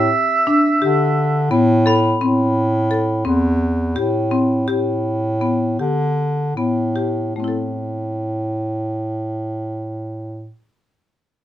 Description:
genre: contemporary instrumental, chamber music in an uneven meter.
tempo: 147-173 BPM (eighths).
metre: 7/8.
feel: straight.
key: A minor.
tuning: A4 = 440 Hz.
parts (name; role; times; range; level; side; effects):
clear oboe; melody; 0.0-1.5 s; E5; -18 LUFS; right 3 dB; none.
marimba with medium hard mallets; arpeggios; 0.0-10.6 s; A3 to A4; -20 LUFS; left 3 dB; none.
warm bass clarinet; bass; 0.0-10.5 s; E2 to D3; -19 LUFS; right 1 dB; none.
glockenspiel with hard plastic mallets; texture; 1.9-2.5 s; B5; -26 LUFS; left 4 dB; none.
room: light reverb.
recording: none.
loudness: -16 LUFS.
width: side -12 dB against mid.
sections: 0.0-2.2 A section; 2.2-7.4 B section; 7.4-10.2 C section.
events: slowing down 2.2-7.4.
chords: 0.0 G6/A; 2.2 Am7; 4.7 G/A; 7.4 Am.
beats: 0.12 0.47 0.81 1.16 1.50 1.85 | 2.20 2.55 2.90 3.25 3.60 3.95 4.31 | 4.68 5.04 5.42 5.79 6.17 6.56 6.96 | 7.36 7.76 8.17 8.58 8.98 9.39 9.80.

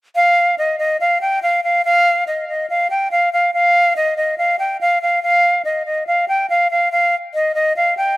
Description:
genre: hip hop.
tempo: 142 BPM.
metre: 4/4.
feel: half-time.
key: unclear.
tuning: A4 = 440 Hz.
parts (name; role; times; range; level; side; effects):
jazz flute; melody; 0.2-8.2 s; Eb5 to G5; -14 LUFS; equal; none.
room: light reverb, studio reverb.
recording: dry, gritty hardware recording.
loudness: -14 LUFS.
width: side -19 dB against mid.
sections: 0.2-8.2 A section.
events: none.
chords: none.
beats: | 0.16 0.58 1.00 1.43 | 1.85 2.27 2.69 3.12 | 3.54 3.96 4.38 4.80 | 5.23 5.65 6.07 6.50 | 6.92 7.34 7.76.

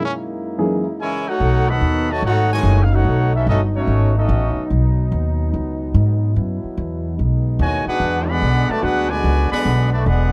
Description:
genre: jazz, big band swing.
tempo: 146 BPM.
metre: 4/4.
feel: swing 67% on 8ths.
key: B major.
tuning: A4 = 442 Hz.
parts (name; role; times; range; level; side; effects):
warm trombone section; sustained chords; 0.0-10.3 s; F#2 to E4; -30 LUFS; equal; none.
dark baby grand piano; accompaniment; 0.6-0.8 s; F#2 to G#4; -22 LUFS; equal; none.
warm trumpet section; melody; 1.0-4.7, 7.6-10.3 s; A3 to B5; -24 LUFS; equal; none.
bright trombone section; second line; 1.0-4.7, 7.6-10.3 s; A2 to F#4; -25 LUFS; equal; none.
upright bass; bass; 1.4-10.3 s; E1 to G#2; -20 LUFS; equal; none.
room: little or no reverb.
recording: none.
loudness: -18 LUFS.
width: mono.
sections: 0.0-1.4 A section; 1.4-10.3 B section.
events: break 0.0-1.4.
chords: 0.0 F#13; 1.4 B13; 6.4 Esus2; 7.2 B13; 8.0 E13.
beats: 0.17 0.58 0.99 | 1.40 1.81 2.23 2.64 | 3.05 3.46 3.88 4.29 | 4.70 5.12 5.53 5.95 | 6.36 6.77 7.18 7.60 | 8.01 8.42 8.83 9.24 | 9.66 10.07.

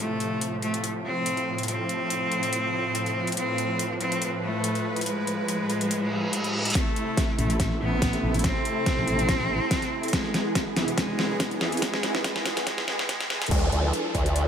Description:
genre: heavy wobble dubstep.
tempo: 142 BPM.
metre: 4/4.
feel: swing 54% on 16ths, half-time.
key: A harmonic minor.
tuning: A4 = 439 Hz.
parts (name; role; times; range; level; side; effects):
bright cello; melody; 0.0-13.5 s; E3 to C4; -29 LUFS; left 1 dB; tape echo.
supersaw chords; sustained chords; 0.0-14.5 s; A2 to B4; -31 LUFS; right 1 dB; sidechain pumping.
dubstep drum kit; drums; 0.2-14.4 s; crash cymbal, hi-hat, snare drum; -29 LUFS; left 1 dB; overdrive.
reverse cymbal, riser and downlifter; sound effects; 6.1-14.5 s; none; -34 LUFS; equal; none.
electronic kick drum; drums; 6.8-14.2 s; none; -28 LUFS; equal; overdrive.
ethereal airy pad; texture; 7.7-14.5 s; E4 to C6; -33 LUFS; right 1 dB; ensemble chorus, built-in reverb, sidechain pumping.
vowel-sweep wobble bass; bass; 7.4-13.5 s; E1 to E2; -29 LUFS; equal; chorus, overdrive.
formant-sweep wobble bass; bass; 13.5-14.5 s; D2; -24 LUFS; equal; chorus, overdrive.
room: light reverb.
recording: high-pass filter.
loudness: -24 LUFS.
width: side -8 dB against mid.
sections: 0.0-6.8 A section; 6.8-13.5 B section.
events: filter sweep on supersaw synth 0.0-6.8; reverse cymbal 6.1-6.8; build-up 6.8-13.5; drum fill 6.8-13.5; filter sweep 6.8-13.5.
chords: 0.0 F; 6.8 Am; 10.1 E; 13.5 Dm.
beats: 0.41 0.84 1.26 | 1.68 2.10 2.53 2.95 | 3.37 3.79 4.22 4.64 | 5.06 5.48 5.91 6.33 | 6.75 7.17 7.60 8.02 | 8.44 8.87 9.29 9.71 | 10.13 10.55 10.98 11.40 | 11.82 12.24 12.67 13.09 | 13.51 13.94 14.36.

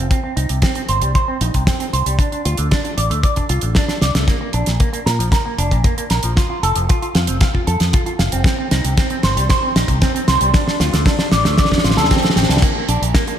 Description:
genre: italo disco.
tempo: 115 BPM.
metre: 4/4.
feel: straight.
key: unclear.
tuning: A4 = 440 Hz.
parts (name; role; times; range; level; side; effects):
electric guitar with an envelope filter; arpeggios; 0.0-13.3 s; Bb2 to F5; -20 LUFS; right 2 dB; low-pass filter, ping-pong delay.
fingered electric bass with an envelope filter; bass; 0.0-13.1 s; F1 to Bb2; -20 LUFS; left 1 dB; tube saturation.
damped 70s drum kit; drums; 0.1-13.4 s; crash cymbal, hi-hat, snare drum; -20 LUFS; right 1 dB; small room reverb, gated reverb.
kick drum; drums; 0.1-13.3 s; none; -16 LUFS; left 1 dB; small room reverb.
room: moderate plate reverb, RT60 2.0 s, small room reverb.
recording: bright 1980s-style digital production.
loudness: -14 LUFS.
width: side -10 dB against mid.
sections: 0.0-4.3 A section; 4.3-12.6 B section.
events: drum fill 3.9-4.3, 4.3-12.6; band accent 4.1.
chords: 0.1 C5; 2.2 D5; 4.3 Bb5; 6.4 N.C.; 8.5 C5; 10.5 D5; 12.6 Bb.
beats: | 0.11 0.63 1.15 1.67 | 2.19 2.71 3.24 3.76 | 4.28 4.80 5.32 5.84 | 6.37 6.89 7.41 7.93 | 8.45 8.97 9.50 10.02 | 10.54 11.06 11.58 12.11 | 12.63 13.15.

